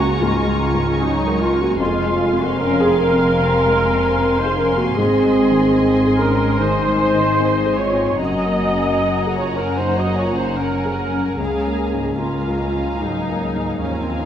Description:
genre	cinematic, emotional film score for orchestra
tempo	75 BPM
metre	4/4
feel	rubato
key	Db major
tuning	A4 = 440 Hz
part	muted studio violin section	melody	0.0-14.3 s	Bb5 to Db6	-29 LUFS	left 1 dB	none
part	dark clarinet	second line	0.0-14.3 s	C4 to Eb5	-24 LUFS	left 1 dB	none
part	muted studio violin section	second line	0.0-14.3 s	Eb5 to Bb5	-28 LUFS	left 2 dB	none
part	felt-muted upright piano	accompaniment	0.0-14.3 s	Db2 to Bb4	-24 LUFS	left 2 dB	none
part	muted studio viola section	accompaniment	0.0-14.3 s	C4 to Eb5	-22 LUFS	right 1 dB	none
part	dark French horn section	sustained chords	0.0-14.2 s	Eb3 to Gb4	-22 LUFS	left 1 dB	none
part	muted studio cello section	bass	0.0-14.3 s	Db2 to Ab2	-26 LUFS	right 2 dB	none
part	muted studio double bass section	bass	0.0-14.3 s	F1 to Eb2	-26 LUFS	right 2 dB	none
room	wet recital hall reverb, RT60 1.9 s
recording	none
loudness	-16 LUFS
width	side -9 dB against mid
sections	0.0-14.3 A section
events	none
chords	0.0 Db6; 1.8 Fm; 5.0 Ab; 8.2 Gbadd9; 11.4 Db6

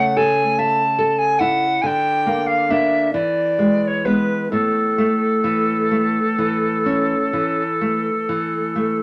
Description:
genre	romantic duo for recorder and classical guitar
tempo	42-49 BPM (dotted quarters)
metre	12/8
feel	rubato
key	A major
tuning	A4 = 441 Hz
part	tenor recorder	melody	0.0-9.0 s	A4 to A5	-21 LUFS	equal	none
part	nylon-string guitar	accompaniment	0.0-9.0 s	A2 to E5	-22 LUFS	equal	none
room	moderate studio reverb, RT60 0.6 s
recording	none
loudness	-19 LUFS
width	mono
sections	0.0-9.0 A section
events	none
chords	0.0 A/C#; 1.8 Bb/D; 3.1 E7; 4.5 A

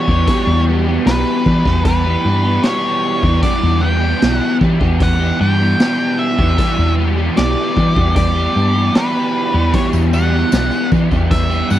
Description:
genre	psychedelic rock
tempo	76 BPM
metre	4/4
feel	straight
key	E dorian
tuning	A4 = 440 Hz
part	octave-fuzz lead guitar	melody	0.0-11.8 s	B4 to G5	-20 LUFS	equal	distortion, slapback echo
part	crunchy overdriven guitar	riff	0.0-11.8 s	E2 to G4	-17 LUFS	right 1 dB	flanger
part	hollow-body short-scale fingered electric bass	bass	0.1-11.8 s	B1 to E3	-16 LUFS	equal	none
part	raw garage drum kit	drums	0.1-11.5 s	hi-hat, kick drum, snare drum	-18 LUFS	equal	none
part	tambourine	percussion	9.7-11.8 s	none	-38 LUFS	left 12 dB	none
room	studio reverb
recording	dry, close 1970s-style studio recording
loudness	-12 LUFS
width	side -12 dB against mid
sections	0.0-11.8 A section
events	none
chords	0.0 Em

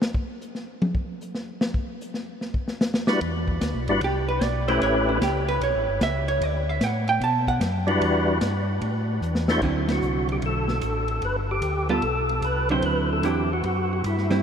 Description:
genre	soul jazz organ trio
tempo	150 BPM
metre	4/4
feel	swing 67% on 8ths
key	D mixolydian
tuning	A4 = 440 Hz
part	vintage drum kit	drums	0.0-14.4 s	crash cymbal, hi-hat, kick drum, ride cymbal, snare drum, toms	-28 LUFS	left 1 dB	none
part	percussive tonewheel organ	melody	3.1-5.2, 7.9-14.4 s	G3 to C5	-26 LUFS	left 1 dB	slow rotary speaker, overdrive, chorus vibrato
part	mellow tonewheel organ	bass	3.2-14.4 s	G1 to B2	-27 LUFS	equal	chorus vibrato, slow rotary speaker
part	vintage hollow-body jazz guitar	accompaniment	4.0-14.4 s	D3 to A5	-26 LUFS	right 3 dB	none
room	wet huge ambient reverb, RT60 7.7 s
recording	in a vast, echoing space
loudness	-22 LUFS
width	side -7 dB against mid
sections	0.0-9.6 A section; 9.6-14.4 B section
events	hollow-body jazz guitar solo 0.0-9.6; drum solo 0.0-3.2; drum fill 9.2-9.6; band accent 9.8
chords	0.0 N.C.; 2.4 B5; 3.2 Em7; 4.8 A9; 6.4 D5; 7.2 B5; 8.0 Em7; 8.8 A5; 9.6 D9; 11.2 Gadd9; 12.8 D9

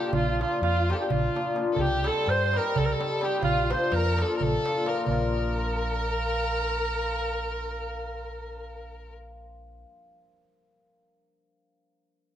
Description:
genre	balkan folk, Balkan wedding band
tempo	255 BPM (eighths)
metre	7/8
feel	straight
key	Bb major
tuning	A4 = 438 Hz
part	clear alto saxophone	melody	0.0-9.1 s	F4 to C5	-29 LUFS	right 3 dB	none
part	dark violin	second line	0.0-9.1 s	F4 to C5	-33 LUFS	left 3 dB	none
part	cimbalom	accompaniment	0.0-10.1 s	F3 to G4	-31 LUFS	left 4 dB	none
part	darbuka	percussion	0.0-5.3 s	none	-32 LUFS	right 4 dB	none
part	fingered electric bass	bass	0.1-9.8 s	Bb1 to G2	-31 LUFS	equal	none
room	moderate recital hall reverb, RT60 1.4 s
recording	none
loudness	-24 LUFS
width	side -11 dB against mid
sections	0.0-5.1 A section; 5.1-8.4 B section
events	none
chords	0.0 Bb; 1.8 Cm; 3.4 Bb

